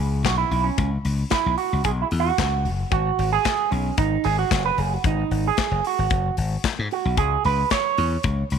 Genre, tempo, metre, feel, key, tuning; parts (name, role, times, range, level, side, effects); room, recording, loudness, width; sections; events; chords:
disco; 112 BPM; 4/4; straight; C# minor; A4 = 440 Hz
electric guitar with an envelope filter; accompaniment; 0.0-8.5 s; C#4 to C#5; -23 LUFS; right 11 dB; lush chorus
slap bass; bass; 0.0-8.6 s; F#1 to G#2; -23 LUFS; left 2 dB
modern studio drum kit; drums; 0.2-8.6 s; handclaps, hi-hat, kick drum, snare drum; -27 LUFS; left 6 dB
light reverb, studio reverb; 1960s-style stereo with parts hard left and right; -20 LUFS; side -7 dB against mid
0.0-8.6 A section
clean electric guitar solo 0.0-8.6
0.0 C#m7; 2.9 G#7(no3); 7.2 C#m7